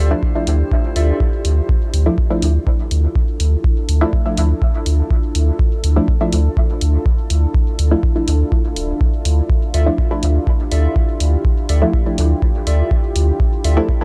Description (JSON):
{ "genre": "dub techno", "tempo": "123 BPM", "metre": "4/4", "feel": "straight", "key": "D minor", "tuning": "A4 = 444 Hz", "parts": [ { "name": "deep dark ambient pad", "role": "sustained chords", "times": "0.0-14.0 s", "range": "D4 to A4", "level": "-28 LUFS", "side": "equal", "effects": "chorus, built-in reverb, sidechain pumping" }, { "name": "warbly lo-fi synth keys", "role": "riff", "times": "0.0-1.2, 9.7-13.8 s", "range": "F4 to E5", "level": "-30 LUFS", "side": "equal", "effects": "chorus, sidechain pumping, dub echo" }, { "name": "pure sine sub bass", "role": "bass", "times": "0.0-13.8 s", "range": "D1 to D2", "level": "-16 LUFS", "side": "equal", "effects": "tube saturation, sidechain pumping" }, { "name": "drifting glass-harmonics texture", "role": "texture", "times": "0.0-1.7 s", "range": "G3 to C5", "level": "-40 LUFS", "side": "equal", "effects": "chorus, built-in reverb, sidechain pumping" }, { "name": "filtered dub chord stab", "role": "stabs", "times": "0.1-14.0 s", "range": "F3 to E4", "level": "-24 LUFS", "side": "equal", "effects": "chorus, phaser, sidechain pumping, dub echo" }, { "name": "electronic kick drum", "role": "drums", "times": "0.2-14.0 s", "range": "none", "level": "-19 LUFS", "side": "equal", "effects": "small room ambience" }, { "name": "electronic hi-hat", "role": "drums", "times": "0.5-13.7 s", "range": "none", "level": "-28 LUFS", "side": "equal", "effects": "small room ambience" } ], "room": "digital ambience", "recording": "dry, gritty hardware recording, transformer saturation, cassette tape", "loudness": "-16 LUFS", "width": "mono", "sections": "0.0-1.7 A section; 1.7-14.0 A section", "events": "none", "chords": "0.0 Dmadd9" }